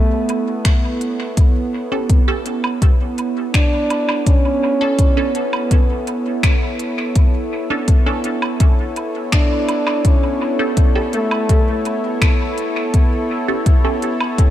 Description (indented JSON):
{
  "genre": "ambient dub",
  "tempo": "83 BPM",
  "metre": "4/4",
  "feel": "straight",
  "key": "unclear",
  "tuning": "A4 = 439 Hz",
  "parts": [
    { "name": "trombone with bucket mute", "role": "melody", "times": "0.0-12.5 s", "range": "A3 to D4", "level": "-21 LUFS", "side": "equal", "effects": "dub echo" },
    { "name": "warm analog pad", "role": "sustained chords", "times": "0.0-14.5 s", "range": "B3 to C#5", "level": "-22 LUFS", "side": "right 1 dB", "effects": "chorus" },
    { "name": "organic electronic drum kit", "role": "drums", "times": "0.3-14.5 s", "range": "finger snaps, hi-hat, woodblock", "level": "-25 LUFS", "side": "right 1 dB", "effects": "dub echo" },
    { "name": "electronic kick drum", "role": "drums", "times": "0.7-14.5 s", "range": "none", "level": "-13 LUFS", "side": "equal", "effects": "none" },
    { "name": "filtered dub chord stab", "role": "stabs", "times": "1.9-14.0 s", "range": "C#4 to A4", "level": "-25 LUFS", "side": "right 3 dB", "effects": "phaser, dub echo" }
  ],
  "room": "moderate plate reverb, RT60 3.5 s",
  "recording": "dreamy mix soaked in reverb",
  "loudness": "-15 LUFS",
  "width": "side -12 dB against mid",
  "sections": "0.0-14.5 A section",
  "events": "none",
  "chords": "0.0 A7; 4.3 Bm9; 10.0 A7"
}